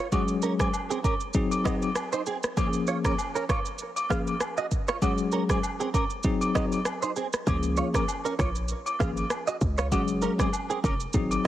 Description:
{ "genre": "afrobeats", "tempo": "98 BPM", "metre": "4/4", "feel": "swing 55% on 16ths", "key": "Db major", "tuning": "A4 = 439 Hz", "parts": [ { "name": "direct-recorded clean electric guitar", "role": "riff", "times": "0.0-11.5 s", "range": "C4 to F5", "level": "-32 LUFS", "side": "right 5 dB", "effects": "ensemble chorus, digital delay" }, { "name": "bell-like tine electric piano", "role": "accompaniment", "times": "0.1-11.5 s", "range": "F3 to Ab4", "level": "-29 LUFS", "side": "left 3 dB", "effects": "fast stereo tremolo" }, { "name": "afro-pop drum kit", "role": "drums", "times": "0.1-11.5 s", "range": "kick drum, rim click, shaker", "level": "-29 LUFS", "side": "equal", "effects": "none" }, { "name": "agogo bells and woodblock", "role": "percussion", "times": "0.1-11.4 s", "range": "none", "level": "-33 LUFS", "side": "left 2 dB", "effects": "none" }, { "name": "short 808-style bass", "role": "bass", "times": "7.5-11.5 s", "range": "F1 to Db2", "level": "-29 LUFS", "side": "equal", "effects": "none" } ], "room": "light reverb", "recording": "heavily compressed radio sound", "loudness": "-25 LUFS", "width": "side -13 dB against mid", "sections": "0.0-11.5 A section", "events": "none", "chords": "0.1 Gbsus2; 1.3 Ab7; 2.6 Db6; 5.0 Gbsus2; 6.2 Ab7; 7.5 Db6; 9.9 Gbsus2", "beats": "| 0.12 0.73 1.35 1.96 | 2.57 3.18 3.80 4.41 | 5.02 5.63 6.25 6.86 | 7.47 8.08 8.69 9.31 | 9.92 10.53 11.14" }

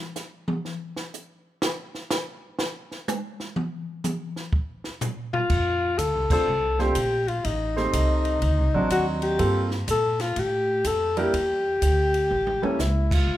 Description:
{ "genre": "jazz, small-group swing and bop", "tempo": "124 BPM", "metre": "4/4", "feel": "swing 66% on 8ths", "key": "F major", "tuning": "A4 = 440 Hz", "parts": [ { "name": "compact cocktail drum kit", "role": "drums", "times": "0.2-13.2 s", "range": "crash cymbal, hi-hat, kick drum, ride cymbal, snare drum, toms", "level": "-29 LUFS", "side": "equal", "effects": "none" }, { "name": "breathy alto saxophone", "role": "melody", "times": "5.3-13.4 s", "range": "C#4 to A4", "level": "-24 LUFS", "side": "left 2 dB", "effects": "none" }, { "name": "upright bass", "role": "bass", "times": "5.5-13.4 s", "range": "A1 to Bb2", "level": "-26 LUFS", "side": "right 1 dB", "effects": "none" }, { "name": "warm baby grand piano", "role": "accompaniment", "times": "6.3-12.8 s", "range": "F#3 to C5", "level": "-27 LUFS", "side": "right 3 dB", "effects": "none" } ], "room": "light reverb", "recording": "none", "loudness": "-22 LUFS", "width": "side -14 dB against mid", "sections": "0.0-5.5 A section; 5.5-13.4 B section", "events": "alto saxophone solo 0.0-5.5; drum solo 0.0-5.5; band accent 6.2, 13.0; drum fill 12.3-12.8", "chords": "0.0 N.C.; 5.5 F6; 7.4 Am7b5; 8.4 D7b9; 9.4 Gm11; 11.3 Dsus24; 12.3 A7b9", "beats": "0.16 0.65 1.13 | 1.62 2.10 2.59 3.07 | 3.56 4.04 4.53 5.01 | 5.50 5.99 6.47 6.96 | 7.45 7.93 8.42 8.91 | 9.39 9.88 10.37 10.85 | 11.34 11.82 12.31 12.79 | 13.28" }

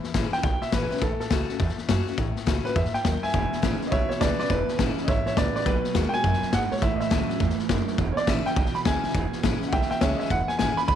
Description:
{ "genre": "rockabilly", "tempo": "207 BPM", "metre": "4/4", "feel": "swing 62% on 8ths", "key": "E major", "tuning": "A4 = 440 Hz", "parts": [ { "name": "picked steel-string acoustic guitar", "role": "accompaniment", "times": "0.0-11.0 s", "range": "E2 to F#4", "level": "-32 LUFS", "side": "left 7 dB", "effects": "none" }, { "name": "upright bass", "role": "bass", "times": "0.0-11.0 s", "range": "E1 to G#2", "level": "-28 LUFS", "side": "right 2 dB", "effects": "none" }, { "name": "vintage drum kit", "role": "drums", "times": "0.0-11.0 s", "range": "hi-hat, kick drum, snare drum", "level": "-28 LUFS", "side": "left 3 dB", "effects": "none" }, { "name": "clear upright piano", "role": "melody", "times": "0.3-11.0 s", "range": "A4 to B5", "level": "-27 LUFS", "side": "right 1 dB", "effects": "none" }, { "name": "electric guitar through a small old amp", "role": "riff", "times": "3.3-10.3 s", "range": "E2 to G#3", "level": "-31 LUFS", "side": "right 14 dB", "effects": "none" } ], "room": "light reverb", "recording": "1960s-style stereo with parts hard left and right", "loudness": "-22 LUFS", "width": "side -10 dB against mid", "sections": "0.0-10.3 A section", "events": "upright piano solo 0.0-10.3", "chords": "0.0 E6; 1.0 A6; 3.3 E6; 5.7 B6; 6.8 A6; 8.0 E6", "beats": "0.15 0.44 0.73 | 1.02 1.31 1.60 1.89 | 2.18 2.47 2.76 3.05 | 3.34 3.63 3.92 4.21 | 4.50 4.79 5.08 5.37 | 5.66 5.95 6.24 6.53 | 6.82 7.11 7.40 7.69 | 7.98 8.27 8.56 8.85 | 9.14 9.43 9.72 10.01 | 10.30 10.59 10.88" }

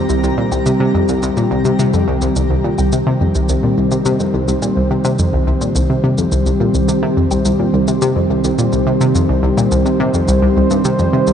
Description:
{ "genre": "ambient, sequencer-driven space music", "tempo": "106 BPM", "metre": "4/4", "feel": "straight", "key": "C minor", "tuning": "A4 = 440 Hz", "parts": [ { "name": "sweeping resonant pad", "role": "sustained chords", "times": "0.0-11.3 s", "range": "Eb3 to C5", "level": "-16 LUFS", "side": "equal", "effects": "chorus, shimmer reverb" }, { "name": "analog pluck", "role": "riff", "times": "0.0-11.3 s", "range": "C2 to C3", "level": "-15 LUFS", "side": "equal", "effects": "chorus, analog delay, shimmer reverb" }, { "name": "twinkling granular texture", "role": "texture", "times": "0.0-2.4 s", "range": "G4 to Bb5", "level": "-33 LUFS", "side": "left 2 dB", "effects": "built-in reverb, shimmer reverb" }, { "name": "shaker and woodblock", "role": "percussion", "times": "0.1-11.3 s", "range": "none", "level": "-29 LUFS", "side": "left 1 dB", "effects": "analog delay" } ], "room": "wet cathedral reverb, RT60 6.3 s", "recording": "in a vast, echoing space, nothing above 10.4 kHz", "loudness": "-13 LUFS", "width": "side -8 dB against mid", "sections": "0.0-2.4 A section; 2.4-11.3 B section", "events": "none", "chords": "0.0 Cm", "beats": "| 0.10 0.66 1.23 1.79 | 2.36 2.93 3.49 4.06 | 4.62 5.19 5.76 6.32 | 6.89 7.45 8.02 8.59 | 9.15 9.72 10.28 10.85" }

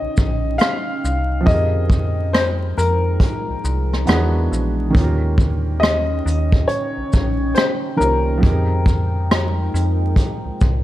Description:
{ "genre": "lo-fi hip hop", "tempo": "69 BPM", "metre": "4/4", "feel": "swing 64% on 16ths", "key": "F minor", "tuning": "A4 = 440 Hz", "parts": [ { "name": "warm upright piano", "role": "melody", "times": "0.0-10.5 s", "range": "Bb4 to F5", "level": "-23 LUFS", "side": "left 2 dB", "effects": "analog delay" }, { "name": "felt-muted upright piano", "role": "accompaniment", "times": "0.0-10.8 s", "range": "Eb3 to Db5", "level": "-25 LUFS", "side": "right 2 dB", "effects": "none" }, { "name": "deep dark ambient pad", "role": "sustained chords", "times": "0.0-10.8 s", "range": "F3 to G5", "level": "-28 LUFS", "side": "equal", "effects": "chorus, built-in reverb" }, { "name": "metallic FM bass", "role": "bass", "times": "0.0-10.8 s", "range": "Bb1 to F2", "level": "-20 LUFS", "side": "equal", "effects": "none" }, { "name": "vintage brush drum kit", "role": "drums", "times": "0.2-10.8 s", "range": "hi-hat, kick drum, rim click, shaker", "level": "-18 LUFS", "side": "equal", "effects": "none" } ], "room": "small room ambience", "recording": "dark, warm production, vinyl crackle", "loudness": "-16 LUFS", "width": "side -14 dB against mid", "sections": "0.0-10.8 A section", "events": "none", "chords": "0.0 Eb13; 1.5 Fm11; 4.1 E9; 4.9 Eb13; 8.4 Fm11", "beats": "0.59 | 1.46 2.33 3.20 4.07 | 4.94 5.81 6.68 7.55 | 8.42 9.29 10.16" }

